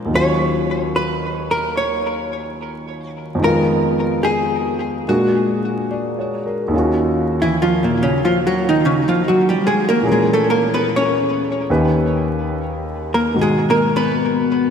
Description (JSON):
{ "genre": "jazz ballad", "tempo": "73 BPM", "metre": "4/4", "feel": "swing 67% on 8ths", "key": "Eb minor", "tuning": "A4 = 442 Hz", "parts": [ { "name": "warm concert grand piano", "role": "accompaniment", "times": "0.0-14.7 s", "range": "Eb2 to D5", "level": "-19 LUFS", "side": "equal", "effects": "none" }, { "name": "hollow-body jazz guitar", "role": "melody", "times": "0.2-14.7 s", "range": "Bb2 to Db5", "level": "-18 LUFS", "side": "equal", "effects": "wide subtle chorus, ping-pong delay" } ], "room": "wet lush hall reverb, RT60 3.1 s", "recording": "dreamy mix soaked in reverb, vinyl crackle", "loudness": "-15 LUFS", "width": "side -7 dB against mid", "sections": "0.0-6.7 A section; 6.7-14.7 B section", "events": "hollow-body jazz guitar solo 6.7-14.7", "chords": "0.1 Ebm9; 3.4 Fm7b5; 5.1 Bbaug7; 6.7 Ebm9; 10.0 Bbm7b5; 11.7 Eb7b13; 13.3 Abm9", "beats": "| 0.10 0.93 1.75 2.58 | 3.40 4.23 5.06 5.90 | 6.73 7.56 8.39 9.21 | 10.04 10.87 11.69 12.51 | 13.34 14.16" }